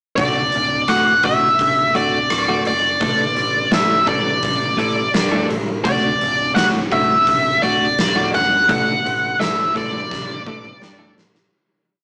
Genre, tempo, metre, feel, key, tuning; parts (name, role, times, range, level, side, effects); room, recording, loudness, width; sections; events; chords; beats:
quiet-loud alternative rock; 84 BPM; 4/4; straight; D major; A4 = 441 Hz
octave-fuzz lead guitar; melody; 0.2-11.1 s; D5 to F#5; -19 LUFS; equal; distortion
clean electric guitar; arpeggios; 0.2-11.4 s; A2 to A4; -25 LUFS; equal
modern bright picked electric bass; bass; 0.2-11.5 s; D1 to G2; -30 LUFS; equal
huge arena drum kit; drums; 0.2-11.5 s; hi-hat, kick drum, rim click, snare drum, toms; -25 LUFS; equal
light reverb; rough rehearsal-room recording, warm saturation, small speaker sound; -17 LUFS; mono
0.2-11.5 verse
fade-out 8.7-11.5; drum fill 10.1-11.5
0.2 D; 3.0 Asus4; 5.9 D; 8.7 Asus4
| 0.18 0.89 1.60 2.30 | 3.01 3.72 4.43 5.14 | 5.85 6.56 7.27 7.98 | 8.69 9.40 10.11 10.82